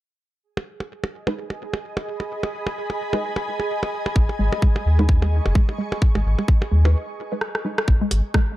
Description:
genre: minimal techno.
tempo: 129 BPM.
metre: 4/4.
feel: swing 58% on 16ths.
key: G# minor.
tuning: A4 = 441 Hz.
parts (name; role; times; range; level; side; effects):
ethereal airy pad; texture; 1.3-6.9 s; G#4 to C#6; -29 LUFS; right 1 dB; ensemble chorus, built-in reverb, sidechain pumping.
percussion blips; percussion; 0.6-8.2 s; none; -28 LUFS; right 1 dB; none.
filtered dub chord stab; stabs; 1.3-7.8 s; G#3 to B4; -30 LUFS; equal; ensemble chorus, tape echo.
round analog bass; bass; 4.2-8.2 s; F#1 to D#2; -18 LUFS; equal; sidechain pumping.
electronic kick drum; drums; 4.2-8.5 s; none; -17 LUFS; equal; none.
hollow square pluck; riff; 4.4-8.4 s; G#3; -28 LUFS; right 1 dB; chorus, phaser, cassette tape, sidechain pumping, tape echo.
garage drum kit; drums; 7.4-8.5 s; hi-hat, rim click; -26 LUFS; equal; none.
room: little or no reverb.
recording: dark, warm production.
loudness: -19 LUFS.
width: side -15 dB against mid.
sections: 0.4-7.9 A section.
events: break 6.9-7.9; drum fill 7.4-7.9.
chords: 0.4 G#m; 7.9 N.C..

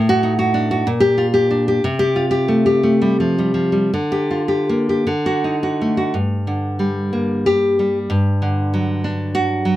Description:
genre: romantic piece for solo classical guitar.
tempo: 52-65 BPM (dotted quarters).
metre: 6/8.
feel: rubato.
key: G minor.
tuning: A4 = 444 Hz.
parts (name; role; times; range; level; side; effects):
nylon-string guitar; solo; 0.0-9.8 s; G2 to G4; -15 LUFS; equal; none.
room: light reverb.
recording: none.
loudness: -16 LUFS.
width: side -14 dB against mid.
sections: 0.0-6.2 A section; 6.2-9.8 B section.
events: none.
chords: 0.0 D/A; 0.9 Gm/Bb; 1.8 Fadd9/C; 3.9 Gm/D; 5.1 D; 6.2 Gm; 8.1 D/G.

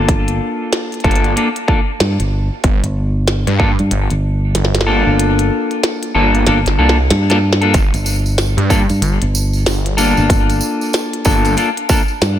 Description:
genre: glitch hop.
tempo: 94 BPM.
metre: 4/4.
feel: swing 61% on 16ths.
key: G minor.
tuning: A4 = 442 Hz.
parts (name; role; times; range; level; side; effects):
clean electric guitar; stabs; 0.0-12.0 s; Bb3 to A4; -17 LUFS; left 2 dB; lush chorus, sidechain pumping, low-pass filter, ping-pong delay.
fingered electric bass; bass; 0.0-12.4 s; G1 to G2; -16 LUFS; equal; none.
electronic kick drum; drums; 0.1-3.8, 7.7-12.1 s; none; -14 LUFS; equal; overdrive.
glitchy drum kit; drums; 0.1-12.4 s; hi-hat, snare drum; -20 LUFS; equal; none.
phased detuned saw bass; bass; 1.0-11.6 s; G1 to G2; -16 LUFS; equal; phaser, tube saturation.
tambourine; percussion; 7.7-12.4 s; none; -26 LUFS; right 5 dB; none.
room: light reverb, digital ambience.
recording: none.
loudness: -12 LUFS.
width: side -11 dB against mid.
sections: 0.0-12.4 A section.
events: kick drops out 5.2-7.7; drum fill 6.5-7.7.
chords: 0.0 Gm7.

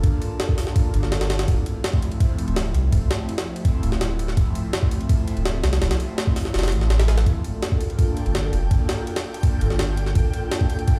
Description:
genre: drum and bass, jungle.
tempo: 166 BPM.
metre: 4/4.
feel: straight.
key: G minor.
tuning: A4 = 440 Hz.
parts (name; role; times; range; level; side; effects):
airy breathy pad; sustained chords; 0.0-11.0 s; F3 to A4; -32 LUFS; equal; chorus, phaser.
soft dub sub bass; bass; 0.0-10.2 s; D1 to C2; -24 LUFS; equal; none.
jungle sampler-style drum kit; drums; 0.0-11.0 s; hi-hat, kick drum, ride cymbal, snare drum; -24 LUFS; equal; none.
twinkling granular texture; texture; 7.8-11.0 s; G5 to G6; -40 LUFS; equal; built-in reverb.
room: light reverb.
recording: played on a big sound system in a bare room, large studio reverb.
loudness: -22 LUFS.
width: mono.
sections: 0.0-11.0 A section.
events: kick drops out 6.5-7.3.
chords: 0.0 Gm7; 1.5 Dm7; 7.3 Gm7.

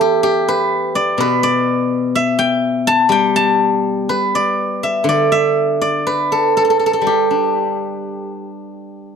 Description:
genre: chinese traditional, Chinese solo plucked strings.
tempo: 52-64 BPM.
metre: 4/4.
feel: rubato.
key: G gong mode.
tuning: A4 = 444 Hz.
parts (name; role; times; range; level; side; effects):
steel-string zither; solo; 0.0-9.2 s; B2 to A5; -14 LUFS; equal; none.
room: light reverb.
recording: dry, close 1970s-style studio recording.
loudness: -14 LUFS.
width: side -6 dB against mid.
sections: 0.0-9.2 A section.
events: none.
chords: none.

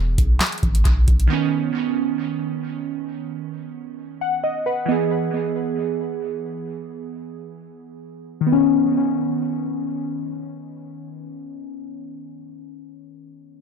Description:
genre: hip hop, trap.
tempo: free time.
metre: none.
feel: none.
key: B major.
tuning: A4 = 441 Hz.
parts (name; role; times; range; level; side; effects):
glassy digital keys; accompaniment; 0.0-13.6 s; D#3 to F#5; -23 LUFS; right 1 dB; chorus, low-pass filter, tape echo.
long sustained 808-style bass; bass; 0.0-1.3 s; E1 to B1; -18 LUFS; equal; none.
booming analog drum machine; drums; 0.2-1.3 s; handclaps, hi-hat, kick drum, snare drum; -19 LUFS; equal; tape echo.
room: little or no reverb.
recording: echo-heavy mix.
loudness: -19 LUFS.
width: side -6 dB against mid.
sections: 0.0-8.5 A section; 8.5-12.0 B section.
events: filter sweep on synth keys 0.0-8.5.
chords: 0.0 E; 1.3 Badd9; 4.9 E; 8.5 Badd9.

